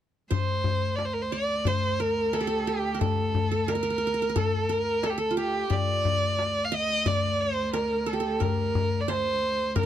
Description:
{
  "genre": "Arabic maqam ensemble",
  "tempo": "89 BPM",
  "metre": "4/4",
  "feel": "straight",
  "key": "D maqam kurd",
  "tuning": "A4 = 440 Hz",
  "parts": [
    { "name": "warm violin", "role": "melody", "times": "0.3-9.9 s", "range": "G4 to F5", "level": "-27 LUFS", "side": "right 1 dB", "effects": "none" },
    { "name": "qanun", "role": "second line", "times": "0.3-9.9 s", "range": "F4 to Eb5", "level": "-34 LUFS", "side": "right 6 dB", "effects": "none" },
    { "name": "clear cello", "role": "drone", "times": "0.3-9.9 s", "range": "D2", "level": "-34 LUFS", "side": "equal", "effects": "none" },
    { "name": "darbuka", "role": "percussion", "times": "0.3-9.9 s", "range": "none", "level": "-28 LUFS", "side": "left 5 dB", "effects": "none" }
  ],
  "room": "little or no reverb",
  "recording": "close, detailed microphones",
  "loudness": "-24 LUFS",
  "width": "side -10 dB against mid",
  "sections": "0.3-9.9 A section",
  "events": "none",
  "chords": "none"
}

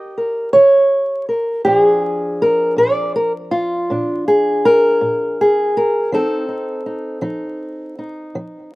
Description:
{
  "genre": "acoustic country blues, solo or duo",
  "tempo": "54 BPM (dotted quarters)",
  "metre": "12/8",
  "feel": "straight",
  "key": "Bb mixolydian",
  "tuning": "A4 = 438 Hz",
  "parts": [
    { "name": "fingerpicked old ladder-braced acoustic guitar", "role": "solo", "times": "0.0-8.8 s", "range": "Bb2 to Eb5", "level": "-14 LUFS", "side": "equal", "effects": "none" }
  ],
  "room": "little or no reverb",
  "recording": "recorded outdoors, with no room sound, vinyl crackle",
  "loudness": "-14 LUFS",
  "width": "side -19 dB against mid",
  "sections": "0.0-8.8 A section",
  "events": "none",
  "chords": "0.0 Eb7; 1.7 Bb7; 6.1 F7"
}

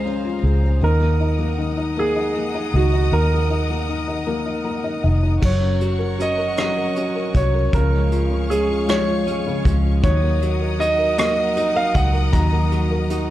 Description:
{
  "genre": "six-eight pop ballad",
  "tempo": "52 BPM (dotted quarters)",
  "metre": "6/8",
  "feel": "straight",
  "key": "unclear",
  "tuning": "A4 = 440 Hz",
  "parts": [
    { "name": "bright grand piano", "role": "melody", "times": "0.0-13.3 s", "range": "Gb4 to Bb5", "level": "-23 LUFS", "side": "right 2 dB", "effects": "digital delay" },
    { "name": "felt-muted upright piano", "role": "accompaniment", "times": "0.0-13.3 s", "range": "Db3 to Bb5", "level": "-25 LUFS", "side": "left 4 dB", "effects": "none" },
    { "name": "rich studio string section", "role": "sustained chords", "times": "0.0-13.3 s", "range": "Db4 to Eb6", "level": "-30 LUFS", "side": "left 3 dB", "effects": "none" },
    { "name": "vintage muted fingered electric bass", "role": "bass", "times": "0.0-13.3 s", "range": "F1 to Eb2", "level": "-20 LUFS", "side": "equal", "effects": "none" },
    { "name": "direct-recorded clean electric guitar", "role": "arpeggios", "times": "5.4-13.3 s", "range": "F3 to Eb4", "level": "-27 LUFS", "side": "right 6 dB", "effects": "digital delay" },
    { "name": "vintage brush drum kit", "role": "drums", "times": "5.4-13.3 s", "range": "crash cymbal, hi-hat, kick drum, rim click", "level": "-22 LUFS", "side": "equal", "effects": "none" }
  ],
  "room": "small room ambience",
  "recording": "dark, warm production",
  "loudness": "-17 LUFS",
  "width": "side -14 dB against mid",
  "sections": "0.0-5.4 A section; 5.4-13.3 B section",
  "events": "felt piano fill 4.3-5.4",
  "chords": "0.0 Db; 0.8 Ebm; 5.4 Gb; 7.7 Db; 10.0 Ebm"
}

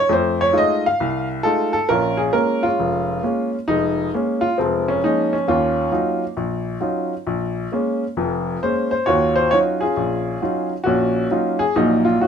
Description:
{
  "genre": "solo jazz",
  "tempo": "134 BPM",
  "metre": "4/4",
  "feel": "swing 66% on 8ths",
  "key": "Bb minor",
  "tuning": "A4 = 440 Hz",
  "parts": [
    { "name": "clear upright piano", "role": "solo", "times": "0.0-12.3 s", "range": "F1 to F5", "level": "-17 LUFS", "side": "equal", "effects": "none" }
  ],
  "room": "moderate studio ambience, RT60 0.5 s",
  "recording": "minimal, uncompressed stereo recording",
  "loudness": "-17 LUFS",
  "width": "side -7 dB against mid",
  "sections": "0.0-1.9 A section; 1.9-12.3 B section",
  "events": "upright piano solo 0.0-1.9",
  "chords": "0.1 F7#9; 1.9 Bbm7; 5.5 Ebm9; 7.3 Bbm7; 9.1 Ebm9"
}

